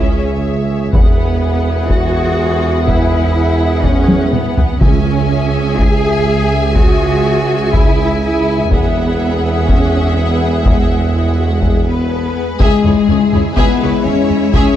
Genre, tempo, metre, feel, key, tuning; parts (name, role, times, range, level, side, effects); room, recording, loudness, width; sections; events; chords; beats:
cinematic, epic orchestral film score; 124 BPM; 4/4; straight; C# minor; A4 = 440 Hz
warm symphonic violin section; melody; 0.0-14.8 s; G#4 to G#5; -25 LUFS; left 5 dB
warm symphonic violin section; second line; 0.0-14.8 s; C#4 to E5; -26 LUFS; left 3 dB
warm studio viola section; accompaniment; 0.0-14.8 s; G#4; -25 LUFS; left 1 dB
warm French horn section; sustained chords; 0.0-14.8 s; G#3 to E5; -20 LUFS; left 6 dB
warm symphonic cello section; bass; 0.0-14.8 s; G#3 to G#4; -19 LUFS; right 1 dB
warm symphonic double bass section; bass; 0.0-14.6 s; C#2 to E2; -18 LUFS; right 2 dB
warm tuba; bass; 0.0-14.6 s; E1 to C#2; -20 LUFS; right 3 dB
taiko ensemble; drums; 0.9-14.8 s; -15 LUFS; equal
timpani; percussion; 4.8-5.5 s; C#3; -19 LUFS; right 3 dB
dark studio string section; sustained chords; 12.6-14.8 s; G#3 to E5; -21 LUFS; left 2 dB
mellow trombone section; sustained chords; 12.6-14.8 s; E3 to G#3; -22 LUFS; right 2 dB
moderate scoring stage reverb, RT60 1.6 s; dark, warm production; -11 LUFS; side -11 dB against mid
0.0-12.6 A section; 12.6-14.8 A section
drum fill 4.1-4.8
0.0 C#m; 0.9 Eadd9; 4.8 C#m; 8.7 Eadd9; 12.6 C#m
0.45 | 0.93 1.42 1.91 2.39 | 2.88 3.36 3.85 4.33 | 4.82 5.31 5.79 6.28 | 6.76 7.25 7.74 8.22 | 8.71 9.19 9.68 10.17 | 10.65 11.14 11.62 12.11 | 12.60 13.08 13.57 14.05 | 14.54